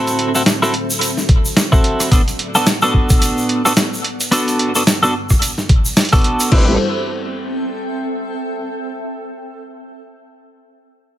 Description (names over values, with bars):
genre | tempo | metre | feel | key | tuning
glitch hop | 109 BPM | 4/4 | swing 58% on 16ths | A dorian | A4 = 441 Hz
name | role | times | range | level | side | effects
dark analog pad | sustained chords | 0.0-6.8 s | G3 to C5 | -27 LUFS | equal | chorus, vintage 12-bit sampler grit, sidechain pumping
twelve-string electric guitar | stabs | 0.0-6.7 s | B3 to B4 | -17 LUFS | equal | vintage 12-bit sampler grit, sidechain pumping, low-pass filter, digital delay
granular cloud pad | texture | 0.0-8.7 s | G3 to G5 | -27 LUFS | equal | built-in reverb, sidechain pumping
boom bap sampler-style drum kit | drums | 0.1-6.6 s | crash cymbal, hi-hat, rim click, snare drum | -18 LUFS | equal | none
tube shaker | percussion | 0.1-6.5 s | none | -22 LUFS | right 1 dB | none
electronic kick drum | drums | 1.3-6.6 s | none | -13 LUFS | equal | none
formant-sweep wobble bass | bass | 6.5-6.8 s | A1 | -16 LUFS | equal | chorus
room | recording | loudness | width
light reverb | none | -13 LUFS | side -13 dB against mid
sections
0.0-6.5 A section; 6.5-8.7 B section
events
fade-out on ambient pad 0.0-6.5; filter sweep on analog synth pad 0.0-6.5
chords
0.0 D7; 2.1 Bm7; 4.3 Gmaj7; 6.5 Am7